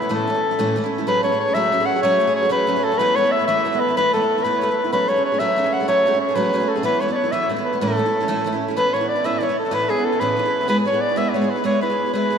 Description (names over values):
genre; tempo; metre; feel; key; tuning
celtic folk, Celtic jig; 125 BPM (dotted quarters); 6/8; straight; A major; A4 = 441 Hz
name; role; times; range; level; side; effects
mellow soprano saxophone; melody; 0.0-12.4 s; G#4 to F#5; -19 LUFS; left 1 dB; none
picked twelve-string acoustic guitar; accompaniment; 0.0-12.4 s; A2 to G#4; -23 LUFS; right 2 dB; none
room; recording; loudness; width
wet cathedral reverb, RT60 5.2 s; in a vast, echoing space; -17 LUFS; side -7 dB against mid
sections
0.0-1.1 A section; 1.1-8.8 A section; 8.8-12.4 B section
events
none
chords
0.1 A; 1.1 F#madd9; 3.0 Esus4; 4.9 F#madd9; 6.8 Esus4; 7.8 A; 8.8 Aadd9; 10.7 E/G#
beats
| 0.10 0.58 | 1.06 1.54 | 2.03 2.51 | 2.99 3.47 | 3.95 4.43 | 4.92 5.40 | 5.88 6.36 | 6.84 7.32 | 7.80 8.28 | 8.76 9.24 | 9.73 10.21 | 10.69 11.17 | 11.65 12.13